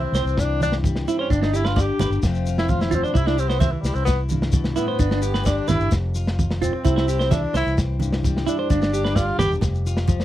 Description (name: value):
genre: highlife guitar band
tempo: 130 BPM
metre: 4/4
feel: straight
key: C major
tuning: A4 = 442 Hz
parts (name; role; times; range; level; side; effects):
- breathy tenor saxophone; melody; 0.0-9.5 s; E3 to G4; -25 LUFS; left 1 dB; none
- picked steel-string acoustic guitar; accompaniment; 0.0-10.2 s; F2 to G4; -29 LUFS; left 5 dB; none
- vintage muted fingered electric bass; bass; 0.0-10.2 s; E1 to C2; -24 LUFS; equal; none
- clean electric guitar; arpeggios; 0.1-9.5 s; D4 to E5; -25 LUFS; right 6 dB; slapback echo
- crunchy breakbeat drum kit; drums; 0.1-10.2 s; kick drum, snare drum; -23 LUFS; equal; none
- congas; percussion; 0.1-10.2 s; none; -27 LUFS; right 3 dB; none
- shekere; percussion; 0.1-10.2 s; none; -29 LUFS; left 2 dB; none
room: little or no reverb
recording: dry, close 1970s-style studio recording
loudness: -19 LUFS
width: side -13 dB against mid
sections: 0.0-10.2 A section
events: tenor saxophone solo 0.0-10.2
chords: 0.0 C; 1.3 G; 2.2 F; 3.1 C; 5.0 G; 5.9 F5; 6.8 C; 8.7 G; 9.6 F5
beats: 0.38 0.84 | 1.30 1.76 2.23 2.69 | 3.15 3.61 4.07 4.54 | 5.00 5.46 5.92 6.39 | 6.85 7.31 7.77 8.24 | 8.70 9.16 9.62 10.09